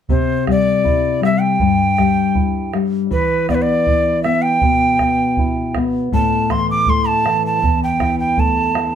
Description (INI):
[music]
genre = andean folk, Andean ensemble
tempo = 80 BPM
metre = 2/4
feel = straight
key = unclear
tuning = A4 = 440 Hz
[part]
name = quena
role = melody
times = 0.1-8.9 s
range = B4 to D6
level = -17 LUFS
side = right 2 dB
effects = none
[part]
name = nylon-string guitar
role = accompaniment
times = 0.1-8.9 s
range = E2 to E4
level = -18 LUFS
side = left 4 dB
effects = none
[part]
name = bombo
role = percussion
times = 0.1-8.9 s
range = none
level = -22 LUFS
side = right 3 dB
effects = none
[sound]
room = wet studio reverb, RT60 0.7 s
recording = band playing live in one room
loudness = -14 LUFS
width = side -8 dB against mid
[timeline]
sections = 0.1-8.9 A section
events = none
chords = 0.1 C; 3.1 E5; 6.1 A5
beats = | 0.10 0.86 | 1.61 2.36 | 3.12 3.87 | 4.62 5.38 | 6.13 6.88 | 7.63 8.38